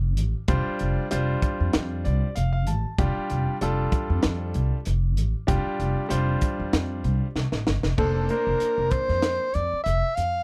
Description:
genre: electric jazz fusion.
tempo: 96 BPM.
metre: 4/4.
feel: swing 53% on 16ths.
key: F major.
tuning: A4 = 440 Hz.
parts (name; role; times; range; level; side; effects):
upright bass; bass; 0.0-10.4 s; F1 to F2; -28 LUFS; equal; none.
crisp fusion drum kit; drums; 0.2-10.3 s; crash cymbal, hi-hat, kick drum, snare drum; -29 LUFS; equal; none.
bright concert grand piano; accompaniment; 0.5-9.4 s; G3 to A5; -31 LUFS; equal; none.
mellow soprano saxophone; melody; 8.0-10.4 s; A4 to F5; -27 LUFS; equal; slapback echo.
room: little or no reverb.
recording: none.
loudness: -25 LUFS.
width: mono.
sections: 0.0-8.0 A section; 8.0-10.4 B section.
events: grand piano fill 1.7-3.0; drum fill 7.4-8.0.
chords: 0.0 F69; 8.0 Bbadd9/F.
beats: | 0.49 1.11 1.74 2.36 | 2.99 3.61 4.24 4.86 | 5.49 6.11 6.73 7.36 | 7.98 8.61 9.23 9.86.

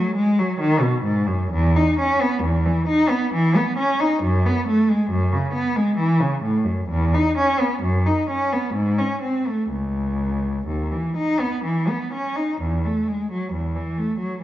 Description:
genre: classical, baroque-style suite movement for unaccompanied cello.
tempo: 60-69 BPM.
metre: 3/4.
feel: rubato.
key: C# minor.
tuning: A4 = 439 Hz.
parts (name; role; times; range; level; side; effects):
rich cello; solo; 0.0-14.4 s; C#2 to D#4; -19 LUFS; equal; none.
room: wet recital hall reverb, RT60 1.4 s.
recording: dark, warm production, nothing above 7.6 kHz.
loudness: -19 LUFS.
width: side -13 dB against mid.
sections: 0.0-12.6 A section; 12.6-14.4 A section.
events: none.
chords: none.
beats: 0.60 | 1.52 2.43 3.33 | 4.22 5.09 5.97 | 6.88 7.79 8.72 | 9.69 10.66 11.64 | 12.61 13.53.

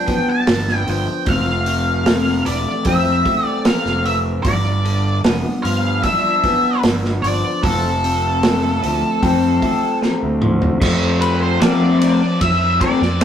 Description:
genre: psychedelic rock.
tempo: 75 BPM.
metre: 4/4.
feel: straight.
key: unclear.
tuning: A4 = 440 Hz.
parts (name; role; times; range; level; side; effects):
octave-fuzz lead guitar; melody; 0.0-13.2 s; A4 to A5; -20 LUFS; left 1 dB; distortion.
electric guitar through a small old amp; riff; 0.0-13.2 s; F2 to D4; -20 LUFS; left 2 dB; phaser.
vintage drum kit; drums; 0.1-13.2 s; crash cymbal, hi-hat, kick drum, ride cymbal, snare drum, toms; -20 LUFS; right 1 dB; none.
fuzz fingered electric bass; bass; 0.5-13.2 s; E1 to F3; -20 LUFS; right 1 dB; overdrive.
room: light reverb.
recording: rough rehearsal-room recording.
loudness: -15 LUFS.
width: side -9 dB against mid.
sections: 0.0-10.8 A section; 10.8-13.2 B section.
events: drum fill 10.0-10.8; lead electric guitar solo 10.8-13.2.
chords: 0.0 G7; 1.3 Fmaj7; 4.4 G7; 7.6 F.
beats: 0.48 | 1.27 2.07 2.86 3.65 | 4.45 5.24 6.04 6.83 | 7.63 8.43 9.22 10.02 | 10.82 11.62 12.41 13.21.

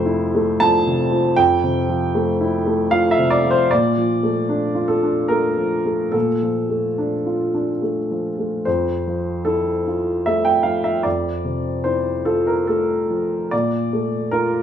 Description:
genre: neoclassical minimalist piano.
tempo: 70-78 BPM.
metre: 3/4.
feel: rubato.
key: F major.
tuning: A4 = 440 Hz.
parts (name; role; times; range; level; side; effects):
warm upright piano; solo; 0.0-14.6 s; F2 to A5; -17 LUFS; equal; none.
room: moderate large studio reverb, RT60 1.3 s.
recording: band playing live in one room.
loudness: -17 LUFS.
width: side -9 dB against mid.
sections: 0.0-8.7 A section; 8.7-14.6 A section.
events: none.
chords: 0.0 Fmaj7; 3.7 Bbmaj7; 8.7 Fmaj7; 13.5 Bbmaj7.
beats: 0.60 | 1.38 2.14 2.92 | 3.70 4.50 5.31 | 6.14 6.98 7.82 | 8.66 9.46 10.26 | 11.05 11.86 12.68 | 13.52 14.33.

